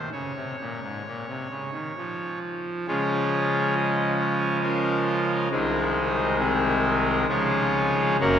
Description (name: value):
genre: classical, chorale-style piece for pipe organ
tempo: 67 BPM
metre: 3/4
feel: rubato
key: Db major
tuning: A4 = 439 Hz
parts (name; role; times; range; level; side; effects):
- pipe organ, trumpet; solo; 0.0-8.4 s; Gb1 to Gb5; -22 LUFS; equal; none
room: wet cathedral reverb, RT60 5.6 s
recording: recorded in a church or concert hall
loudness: -22 LUFS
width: side -8 dB against mid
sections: 0.0-2.9 A section; 2.9-8.4 B section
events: none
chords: 0.1 Db; 5.5 Ab/C; 7.3 Db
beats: | 0.13 1.05 1.97 | 2.88 3.77 4.64 | 5.52 6.39 7.29 | 8.19